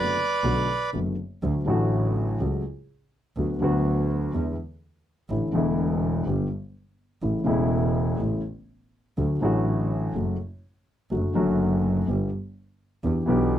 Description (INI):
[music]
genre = tango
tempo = 124 BPM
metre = 4/4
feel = rubato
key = D major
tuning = A4 = 438 Hz
[part]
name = bandoneon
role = melody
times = 0.0-0.9 s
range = B4 to D5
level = -24 LUFS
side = right 3 dB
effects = slapback echo
[part]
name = dark concert grand piano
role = accompaniment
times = 0.0-13.6 s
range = E1 to G4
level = -24 LUFS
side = left 2 dB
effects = none
[part]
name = rich double bass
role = bass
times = 0.0-13.6 s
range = E1 to E2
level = -28 LUFS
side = right 2 dB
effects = none
[sound]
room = light reverb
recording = dry, close 1970s-style studio recording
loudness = -23 LUFS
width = side -11 dB against mid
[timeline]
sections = 0.0-1.4 A section; 1.4-13.6 B section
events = none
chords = 0.0 Bm7; 1.4 D; 2.4 F#m/C#; 3.4 Bm/D; 4.3 E7; 5.3 Asus4; 6.3 G; 7.2 A; 9.2 D; 10.2 F#m; 11.1 D/F#; 12.1 G; 13.0 Em7